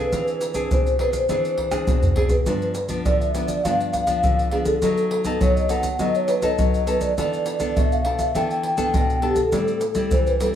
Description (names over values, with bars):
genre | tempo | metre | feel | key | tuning
samba and choro | 102 BPM | 4/4 | straight | unclear | A4 = 440 Hz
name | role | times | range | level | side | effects
vibraphone with soft mallets | melody | 0.0-10.6 s | G4 to G5 | -22 LUFS | equal | none
nylon-string guitar | accompaniment | 0.0-10.6 s | G2 to A4 | -26 LUFS | left 1 dB | none
maracas, surdo, pandeiro and tamborim | percussion | 0.1-10.6 s | none | -23 LUFS | equal | none
room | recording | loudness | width
light reverb, small room ambience | rough home demo mix | -19 LUFS | side -10 dB against mid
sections
0.0-10.6 A section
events
drum fill 1.7-2.5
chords
0.1 E7b13; 2.5 G7; 4.8 B7/F#; 7.2 E7sus4; 9.5 Am7